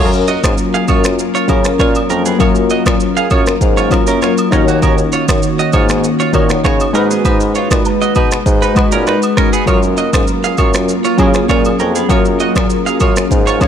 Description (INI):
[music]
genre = afrobeats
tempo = 99 BPM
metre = 4/4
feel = straight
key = F# major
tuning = A4 = 441 Hz
[part]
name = warm analog keys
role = accompaniment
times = 0.0-13.7 s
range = D#3 to C#5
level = -16 LUFS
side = left 2 dB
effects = chorus
[part]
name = glassy FM pad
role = sustained chords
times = 0.4-13.7 s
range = D#3 to B4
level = -20 LUFS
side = left 2 dB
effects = ensemble chorus, built-in reverb
[part]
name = direct-recorded clean electric guitar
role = riff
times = 0.0-13.6 s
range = A#3 to E#5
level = -19 LUFS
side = right 6 dB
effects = lush chorus, ping-pong delay
[part]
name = mellow bassoon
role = bass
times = 0.0-13.7 s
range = D#2 to C#3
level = -18 LUFS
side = equal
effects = none
[part]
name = afro-pop drum kit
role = drums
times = 0.1-13.7 s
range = finger snaps, kick drum, rim click, shaker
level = -15 LUFS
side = equal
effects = none
[part]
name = agogo bells and woodblock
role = percussion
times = 0.4-13.7 s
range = none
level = -25 LUFS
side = right 2 dB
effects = none
[sound]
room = light reverb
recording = none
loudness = -10 LUFS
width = side -8 dB against mid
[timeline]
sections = 0.0-13.7 A section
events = none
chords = 0.0 F#maj7; 4.5 D#m7; 6.9 G#m7; 9.7 F#maj7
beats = 0.58 1.19 1.79 | 2.40 3.01 3.61 4.22 | 4.82 5.43 6.04 6.64 | 7.25 7.86 8.46 9.07 | 9.67 10.28 10.88 11.49 | 12.10 12.70 13.31